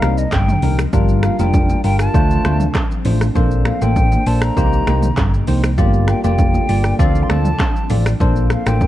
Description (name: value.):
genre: afrobeats.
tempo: 99 BPM.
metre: 4/4.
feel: straight.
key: C dorian.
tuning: A4 = 439 Hz.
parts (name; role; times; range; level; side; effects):
hollow concert flute; melody; 0.0-8.9 s; Eb5 to C6; -24 LUFS; equal; tape echo.
bell-like tine electric piano; accompaniment; 0.0-8.9 s; G3 to D5; -21 LUFS; left 2 dB; analog chorus.
glassy FM pad; sustained chords; 0.0-8.9 s; C3 to A5; -27 LUFS; right 1 dB; none.
hollow-body short-scale fingered electric bass; bass; 0.0-8.9 s; F1 to D2; -17 LUFS; equal; none.
deep house drum kit; drums; 0.0-8.9 s; finger snaps, handclaps, hi-hat, kick drum, rim click, shaker, toms; -18 LUFS; equal; overdrive, vintage 12-bit sampler grit.
bongos and congas; percussion; 0.0-8.9 s; none; -26 LUFS; right 2 dB; none.
room: little or no reverb.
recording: none.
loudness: -13 LUFS.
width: side -14 dB against mid.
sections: 0.0-8.9 A section.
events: none.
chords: 0.0 Cm7; 0.9 Gm7; 2.1 Dm7; 3.4 Bbmaj9; 4.6 Cm7; 5.8 Gm7; 7.0 Dm7; 8.2 Bbmaj9.